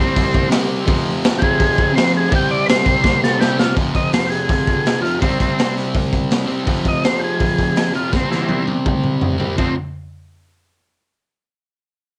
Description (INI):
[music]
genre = garage rock duo or trio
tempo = 165 BPM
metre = 4/4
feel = straight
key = unclear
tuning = A4 = 440 Hz
[part]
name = combo organ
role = melody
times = 0.0-9.7 s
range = E3 to G5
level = -22 LUFS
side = equal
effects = cassette tape
[part]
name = fuzz guitar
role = riff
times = 0.0-9.7 s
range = F2 to C4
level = -22 LUFS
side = equal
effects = distortion
[part]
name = raw garage drum kit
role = drums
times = 0.2-9.7 s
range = crash cymbal, hi-hat, kick drum, snare drum, toms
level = -21 LUFS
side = equal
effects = cassette tape
[sound]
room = light reverb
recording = home recording on cassette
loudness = -17 LUFS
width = mono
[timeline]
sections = 0.0-3.7 A section; 3.7-9.6 B section; 9.6-11.0 C section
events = drum fill 3.0-3.7, 8.1-9.6; transistor combo organ solo 3.7-9.6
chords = 0.0 C5; 0.9 F5; 2.3 C5; 3.7 F5; 5.2 C5; 6.7 F5; 8.1 C; 9.6 F5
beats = 0.15 0.51 | 0.87 1.23 1.59 1.95 | 2.31 2.67 3.02 3.39 | 3.75 4.11 4.47 4.84 | 5.20 5.56 5.93 6.29 | 6.66 7.02 7.39 7.75 | 8.12 8.48 8.85 9.21 | 9.58